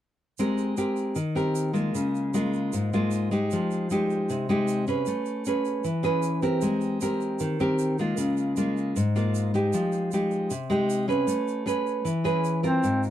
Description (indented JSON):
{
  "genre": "bossa nova",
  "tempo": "154 BPM",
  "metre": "4/4",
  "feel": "straight",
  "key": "Ab major",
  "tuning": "A4 = 441 Hz",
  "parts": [
    { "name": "nylon-string guitar", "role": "accompaniment", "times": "0.4-13.1 s", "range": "Ab2 to Cb5", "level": "-24 LUFS", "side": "equal", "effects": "none" },
    { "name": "egg shaker", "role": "percussion", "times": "0.4-13.1 s", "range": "none", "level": "-43 LUFS", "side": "right 8 dB", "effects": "none" },
    { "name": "warm duduk", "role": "melody", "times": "12.7-13.0 s", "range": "C4", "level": "-24 LUFS", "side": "equal", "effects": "none" }
  ],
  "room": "moderate booth ambience, RT60 0.2 s",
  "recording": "dark, warm production",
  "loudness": "-24 LUFS",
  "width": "side -11 dB against mid",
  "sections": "0.4-12.8 A section",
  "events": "none",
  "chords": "0.4 Abmaj9; 1.9 Db6; 3.5 Fm9; 5.1 Amaj9; 6.6 Abmaj9; 8.2 Db6; 9.7 Fm9; 11.3 Amaj9",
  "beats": "| 0.39 0.78 1.17 1.55 | 1.95 2.33 2.73 3.11 | 3.50 3.89 4.28 4.67 | 5.06 5.45 5.84 6.23 | 6.62 7.01 7.40 7.79 | 8.17 8.56 8.95 9.34 | 9.73 10.12 10.51 10.90 | 11.28 11.67 12.06 12.45 | 12.84"
}